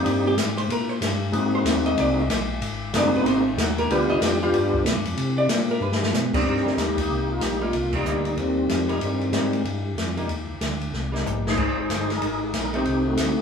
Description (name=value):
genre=soul jazz organ trio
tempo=188 BPM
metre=4/4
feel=swing 63% on 8ths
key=C minor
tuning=A4 = 445 Hz
part: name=percussive tonewheel organ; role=melody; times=0.0-13.4 s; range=Eb3 to C5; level=-24 LUFS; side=left 1 dB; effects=slow rotary speaker, overdrive, chorus vibrato
part: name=tonewheel organ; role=bass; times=0.0-13.4 s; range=Gb1 to C3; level=-28 LUFS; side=left 1 dB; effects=overdrive, chorus vibrato, slow rotary speaker
part: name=open jazz drum kit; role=drums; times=0.1-13.3 s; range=crash cymbal, hi-hat, kick drum, ride cymbal, snare drum, toms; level=-26 LUFS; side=left 1 dB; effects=none
part: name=archtop guitar, miked and amplified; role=accompaniment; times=0.3-13.2 s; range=Eb3 to G5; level=-27 LUFS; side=right 2 dB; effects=none
room=wet large studio reverb, RT60 0.9 s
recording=band playing live in one room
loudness=-21 LUFS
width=side -6 dB against mid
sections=0.0-6.5 A section; 6.5-13.4 B section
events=hollow-body jazz guitar solo 0.0-6.5; drum fill 5.8-6.1, 10.9-11.6; band accent 7.9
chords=0.0 Cm7; 1.3 Ab7; 3.9 G7; 5.2 Bbadd9; 5.8 G; 6.5 Cm7; 11.6 Abmaj9/G; 12.8 F#dim7